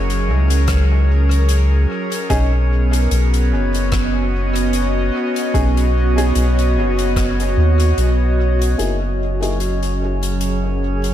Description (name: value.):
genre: ambient dub.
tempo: 74 BPM.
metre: 4/4.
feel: swing 56% on 16ths.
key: F# major.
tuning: A4 = 439 Hz.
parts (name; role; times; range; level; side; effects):
airy breathy pad; sustained chords; 0.0-11.1 s; F#3 to D#5; -21 LUFS; right 1 dB; chorus.
soft dub sub bass; bass; 0.0-11.1 s; F#1 to D#2; -16 LUFS; equal; none.
drifting glass-harmonics texture; texture; 0.0-11.1 s; C#4 to C#5; -27 LUFS; right 1 dB; chorus, built-in reverb.
soft-mallet drum kit; drums; 0.1-11.1 s; hi-hat, rim click; -29 LUFS; left 3 dB; dub echo.
electronic kick drum; drums; 0.7-7.3 s; none; -21 LUFS; equal; none.
warm upright piano; stabs; 2.3-9.6 s; A#3 to G#4; -27 LUFS; left 1 dB; vintage 12-bit sampler grit, low-pass filter, dub echo.
room: small room ambience.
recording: none.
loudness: -14 LUFS.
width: side -11 dB against mid.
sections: 0.0-8.8 A section; 8.8-11.1 B section.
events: none.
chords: 0.0 F#add9; 2.3 B69; 8.8 F#13.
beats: 0.68 1.49 | 2.30 3.11 3.92 4.73 | 5.54 6.35 7.16 7.97 | 8.79 9.60 10.41.